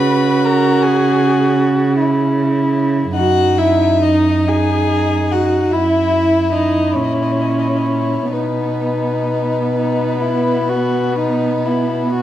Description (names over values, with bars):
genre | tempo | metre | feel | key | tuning
classical, slow romantic movement for string quartet | 42-53 BPM (dotted quarters) | 12/8 | rubato | B major | A4 = 440 Hz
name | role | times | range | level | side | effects
dark violin | melody | 0.0-12.2 s | B4 to B5 | -21 LUFS | left 7 dB | none
dark violin | second line | 0.0-12.2 s | D#4 to F#4 | -19 LUFS | left 2 dB | none
warm viola | accompaniment | 0.0-12.2 s | B3 to B4 | -19 LUFS | right 2 dB | none
warm cello | bass | 0.0-12.2 s | F#2 to C#3 | -18 LUFS | right 3 dB | none
room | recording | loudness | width
wet recital hall reverb, RT60 1.5 s | none | -13 LUFS | side -12 dB against mid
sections
0.0-12.2 A section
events
none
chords
0.0 C#m7; 3.2 Emaj9/F#; 5.7 F#7; 8.3 B